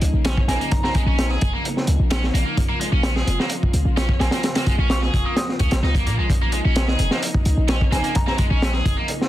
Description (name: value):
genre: breakbeat, breaks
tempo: 129 BPM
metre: 4/4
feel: straight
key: Bb minor pentatonic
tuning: A4 = 442 Hz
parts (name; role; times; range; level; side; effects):
- lush unison pad; sustained chords; 0.0-9.3 s; Db3 to F4; -30 LUFS; equal; chorus, sidechain pumping
- warm 808-style bass; bass; 0.0-9.0 s; F1 to Bb2; -20 LUFS; equal; none
- crunchy breakbeat drum kit; drums; 0.0-9.3 s; hi-hat, kick drum, snare drum; -21 LUFS; equal; none
- heavy high-gain guitar; riff; 0.3-9.1 s; Ab3 to Ab4; -26 LUFS; right 1 dB; distortion, overdrive, ping-pong delay
- soft synth bell; melody; 0.5-0.9, 4.2-8.4 s; Ab5 to Eb6; -30 LUFS; right 1 dB; chorus, phaser, small speaker sound, ping-pong delay
room: little or no reverb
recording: dense, heavily limited modern master, vinyl crackle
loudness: -18 LUFS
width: side -14 dB against mid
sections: 0.0-9.3 A section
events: none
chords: 0.0 Bbm